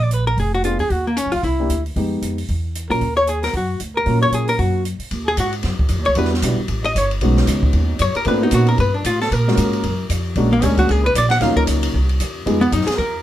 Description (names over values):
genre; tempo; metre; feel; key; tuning
jazz, small-group swing and bop; 229 BPM; 4/4; swing 59% on 8ths; Eb minor; A4 = 441 Hz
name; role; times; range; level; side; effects
archtop guitar, miked and amplified; melody; 0.0-13.2 s; Bb3 to F#5; -20 LUFS; left 2 dB; none
breathy trumpet; second line; 0.0-13.2 s; Bb3 to F#5; -25 LUFS; right 4 dB; none
upright bass; bass; 0.0-13.2 s; F1 to Bb2; -20 LUFS; equal; none
open jazz drum kit; drums; 0.1-13.1 s; hi-hat, kick drum, ride cymbal, snare drum; -25 LUFS; equal; none
warm upright piano; accompaniment; 0.6-12.6 s; F#3 to Ab4; -21 LUFS; left 1 dB; none
room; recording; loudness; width
light reverb; close, detailed microphones; -16 LUFS; side -13 dB against mid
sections
0.0-5.1 A section; 5.1-13.2 B section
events
none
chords
0.0 Bb7b9; 0.9 Ebm7; 1.4 C7; 2.0 Fm7b5; 2.5 Esus2; 3.0 Ebm7; 5.1 Ebm; 6.2 Em7; 6.7 A7#11; 7.2 B69; 8.3 Abm11; 8.8 Gsus2; 9.3 Gbmaj9; 10.4 Bb7alt; 11.4 Ebm9; 11.9 C; 12.4 Fm7b5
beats
0.11 0.37 0.64 | 0.90 1.16 1.43 1.69 | 1.95 2.22 2.48 2.74 | 3.00 3.27 3.53 3.79 | 4.06 4.32 4.58 4.85 | 5.11 5.37 5.63 5.90 | 6.16 6.42 6.68 6.94 | 7.21 7.47 7.73 7.99 | 8.26 8.52 8.78 9.04 | 9.30 9.56 9.83 10.09 | 10.35 10.61 10.88 11.14 | 11.40 11.66 11.93 12.19 | 12.45 12.71 12.97